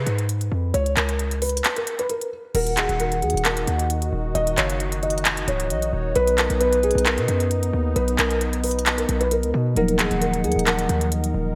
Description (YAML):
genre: hip hop, trap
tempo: 133 BPM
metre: 4/4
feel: half-time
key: Eb minor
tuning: A4 = 439 Hz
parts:
  - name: felt-muted upright piano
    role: melody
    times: 0.0-11.5 s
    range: Ab4 to Eb5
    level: -28 LUFS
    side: equal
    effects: low-pass filter
  - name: hard-hitting 808-style bass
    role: bass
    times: 0.0-11.6 s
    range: Db1 to B2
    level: -27 LUFS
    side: equal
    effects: none
  - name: trap drum kit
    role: drums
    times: 0.1-11.3 s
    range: crash cymbal, handclaps, hi-hat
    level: -27 LUFS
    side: equal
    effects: gated reverb
  - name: hollow clarinet-like synth lead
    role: second line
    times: 2.5-11.5 s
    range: A#4 to Gb5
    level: -30 LUFS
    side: equal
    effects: chorus, phaser, digital delay
  - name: sweeping resonant pad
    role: sustained chords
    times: 2.5-11.6 s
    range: Eb3 to Bb4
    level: -32 LUFS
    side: equal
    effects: chorus
  - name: mellow tine electric piano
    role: accompaniment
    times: 9.8-11.6 s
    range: F3 to Eb4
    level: -27 LUFS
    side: equal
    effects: low-pass filter
room: moderate lush hall reverb, RT60 1.6 s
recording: bright 1980s-style digital production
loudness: -22 LUFS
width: mono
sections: 0.0-2.5 A section; 2.5-11.6 B section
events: break 1.6-2.5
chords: 0.0 Db7(no3); 2.5 Ebm; 6.2 Bmaj7; 9.8 Ebmadd9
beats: 0.29 | 0.74 1.19 1.64 2.10 | 2.55 3.00 3.45 3.90 | 4.35 4.80 5.25 5.70 | 6.16 6.61 7.06 7.51 | 7.96 8.41 8.86 9.31 | 9.77 10.22 10.67 11.12